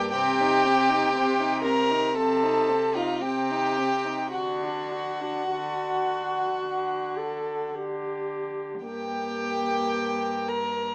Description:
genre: classical, slow romantic movement for string quartet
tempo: 52-60 BPM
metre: 4/4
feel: rubato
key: unclear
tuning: A4 = 445 Hz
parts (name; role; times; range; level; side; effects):
- warm violin; melody; 0.0-10.9 s; F5 to Bb5; -31 LUFS; equal; none
- warm violin; second line; 0.0-10.9 s; F4 to Bb4; -26 LUFS; equal; none
- dark viola; accompaniment; 0.0-10.9 s; Bb3 to A4; -30 LUFS; equal; none
- warm cello; bass; 0.1-10.9 s; G2 to D3; -32 LUFS; equal; none
room: moderate studio reverb, RT60 0.6 s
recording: small speaker sound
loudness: -23 LUFS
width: side -32 dB against mid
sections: 0.0-10.9 A section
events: none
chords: 0.1 Cm; 4.3 D; 8.8 Gm

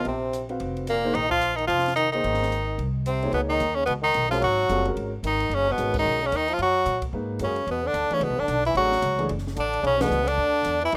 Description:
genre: modal jazz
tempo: 221 BPM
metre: 4/4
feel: swing 61% on 8ths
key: unclear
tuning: A4 = 440 Hz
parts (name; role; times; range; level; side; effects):
- edgy tenor saxophone; melody; 0.0-10.9 s; Bb3 to F#4; -26 LUFS; equal; none
- bright trombone; second line; 0.0-11.0 s; Bb2 to F#3; -31 LUFS; equal; none
- warm grand piano; accompaniment; 0.0-10.1 s; E3 to F5; -33 LUFS; equal; none
- upright bass; bass; 0.0-11.0 s; F1 to A#2; -33 LUFS; equal; none
- compact cocktail drum kit; drums; 0.0-11.0 s; crash cymbal, hi-hat, kick drum, ride cymbal, snare drum; -41 LUFS; equal; none
room: little or no reverb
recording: rough home demo mix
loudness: -24 LUFS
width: mono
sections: 0.0-3.3 A section; 3.3-11.0 B section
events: band accent 5.9, 10.0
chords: 0.0 Bbsus4; 2.2 Abadd9; 3.3 C#13sus4; 7.7 E13sus4

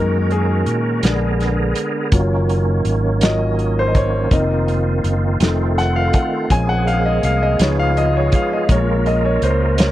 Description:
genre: slow gospel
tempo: 55 BPM (dotted quarters)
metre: 6/8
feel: straight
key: Bb minor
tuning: A4 = 440 Hz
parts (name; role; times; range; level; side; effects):
- clear concert grand piano; accompaniment; 0.0-9.9 s; F3 to Ab5; -20 LUFS; left 3 dB; none
- bright tonewheel organ; sustained chords; 0.0-9.9 s; D3 to Bb4; -23 LUFS; right 4 dB; fast rotary speaker, chorus vibrato
- mellow French horn section; sustained chords; 0.0-9.9 s; Gb3 to Cb5; -27 LUFS; right 3 dB; none
- fingered electric bass; bass; 0.0-9.9 s; F1 to Bb2; -18 LUFS; equal; none
- warm soul drum kit; drums; 0.3-9.9 s; hi-hat, kick drum, snare drum; -17 LUFS; equal; none
room: little or no reverb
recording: dry, close 1970s-style studio recording, tape saturation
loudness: -15 LUFS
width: side -14 dB against mid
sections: 0.0-9.9 A section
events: grand piano solo 0.0-9.9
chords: 0.0 Gb6; 1.0 Bb7b9; 2.1 Ebm7/Gb; 4.3 F7sus4; 5.4 F7; 6.5 Bbm7; 7.6 Db7; 8.7 Bbm11

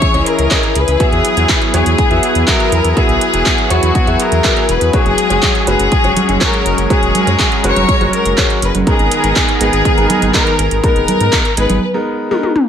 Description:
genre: italo disco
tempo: 122 BPM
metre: 4/4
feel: straight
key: unclear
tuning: A4 = 440 Hz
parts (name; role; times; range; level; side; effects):
- clear chamber violin section; melody; 0.0-11.8 s; F#4 to C#5; -16 LUFS; left 3 dB; tape echo
- lush unison pad; sustained chords; 0.0-11.8 s; D#3 to A#4; -18 LUFS; equal; chorus
- electronic kick drum; drums; 0.0-11.4 s; none; -16 LUFS; equal; none
- house drum kit; drums; 0.0-12.7 s; congas, handclaps, hi-hat, toms; -17 LUFS; right 1 dB; gated reverb
- bright grand piano; stabs; 0.1-12.5 s; G#3 to E5; -20 LUFS; right 1 dB; vintage 12-bit sampler grit
- round analog bass; bass; 0.1-11.8 s; E1 to G#2; -17 LUFS; equal; none
room: light reverb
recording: none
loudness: -10 LUFS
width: side -8 dB against mid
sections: 0.0-12.7 A section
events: break 11.8-12.7; drum fill 12.3-12.7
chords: 0.0 C#madd9; 1.0 Eadd9; 4.9 F#sus2; 8.9 G#madd9

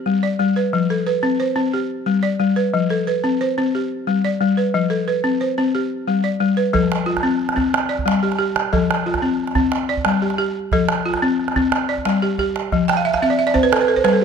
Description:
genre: west african traditional, West African string and xylophone music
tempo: 120 BPM (dotted quarters)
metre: 12/8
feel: straight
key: F lydian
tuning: A4 = 440 Hz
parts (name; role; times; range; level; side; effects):
- balafon; arpeggios; 0.0-14.2 s; F3 to G5; -17 LUFS; left 1 dB; none
- calabash; percussion; 6.7-14.1 s; none; -22 LUFS; right 6 dB; none
room: moderate recital hall reverb, RT60 1.9 s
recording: close, detailed microphones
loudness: -17 LUFS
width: side -6 dB against mid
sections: 0.0-6.7 A section; 6.7-14.2 B section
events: balafon fill 12.9-14.2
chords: 0.0 G; 0.7 F; 1.7 G; 2.7 F; 3.7 G; 4.7 F; 5.7 G; 6.7 F; 7.7 G5; 8.7 F; 9.7 G5; 10.7 F; 11.7 G5; 12.7 F5; 13.7 N.C.

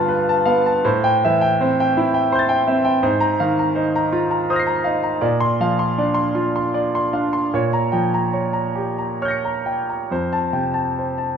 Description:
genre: classical, impressionist solo piano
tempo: 44-57 BPM (dotted quarters)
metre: 6/8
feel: rubato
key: unclear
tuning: A4 = 440 Hz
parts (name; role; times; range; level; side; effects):
- clear grand piano; solo; 0.0-11.4 s; F2 to Db7; -17 LUFS; equal; none
room: moderate recital hall reverb, RT60 1.5 s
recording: minimal, uncompressed stereo recording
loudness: -17 LUFS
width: side -7 dB against mid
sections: 0.0-11.4 A section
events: none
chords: 0.0 G9; 0.8 Am7; 3.0 Ab69; 5.2 Bbadd9; 7.5 Bbm6; 10.1 Fadd9

